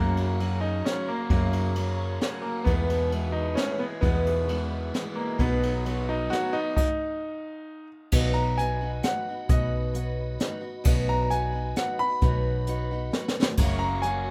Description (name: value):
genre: folk rock and heartland rock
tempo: 132 BPM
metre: 3/4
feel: straight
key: unclear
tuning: A4 = 440 Hz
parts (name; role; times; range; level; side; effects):
- bright grand piano; melody; 0.0-14.3 s; A#3 to B5; -32 LUFS; equal; none
- picked steel-string acoustic guitar; accompaniment; 0.0-14.3 s; E2 to F#4; -35 LUFS; equal; none
- tonewheel organ; sustained chords; 0.0-14.3 s; F#4 to B5; -45 LUFS; equal; none
- raw garage guitar; riff; 0.0-6.8, 13.6-14.3 s; E2 to F#4; -38 LUFS; equal; overdrive, phaser
- hollow-body short-scale fingered electric bass; bass; 0.0-14.3 s; F#1 to F#2; -30 LUFS; equal; none
- jazz brush drum kit; drums; 0.2-14.1 s; crash cymbal, hi-hat, kick drum, ride cymbal, snare drum; -30 LUFS; equal; none
room: light reverb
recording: rough home demo mix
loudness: -27 LUFS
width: mono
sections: 0.0-8.1 A section; 8.1-14.3 B section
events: stop 6.8-8.1; drum fill 13.1-13.6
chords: 0.0 F#; 2.7 E; 5.4 B; 13.6 F#